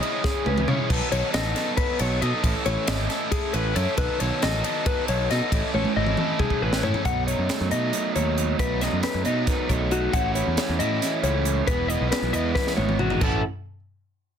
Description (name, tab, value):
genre	math rock and midwest emo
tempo	273 BPM (eighths)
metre	7/8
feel	straight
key	A lydian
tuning	A4 = 438 Hz
part	mellow electric guitar	arpeggios	0.0-13.4 s	F#4 to F#5	-27 LUFS	left 8 dB	none
part	overdriven electric guitar	riff	0.0-13.4 s	A2 to A4	-28 LUFS	right 3 dB	none
part	crisp fusion drum kit	drums	0.0-13.3 s	crash cymbal, hi-hat, kick drum, ride cymbal, snare drum, toms	-27 LUFS	right 1 dB	none
part	picked electric bass	bass	0.5-13.4 s	E1 to C#3	-26 LUFS	equal	none
part	electric guitar through a small old amp	accompaniment	7.1-13.4 s	E2 to G#4	-30 LUFS	right 13 dB	none
room	little or no reverb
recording	dense, heavily limited modern master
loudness	-21 LUFS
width	side -8 dB against mid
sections	0.0-7.1 A section; 7.1-13.2 B section; 13.2-14.4 C section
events	drum fill 0.2-0.9, 5.7-7.1, 12.6-13.2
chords	0.0 C#m9; 0.9 B9; 2.4 Amaj9#11; 4.0 B9; 5.5 Amaj9; 7.1 B7; 10.1 A6; 11.7 Emaj7; 13.2 A6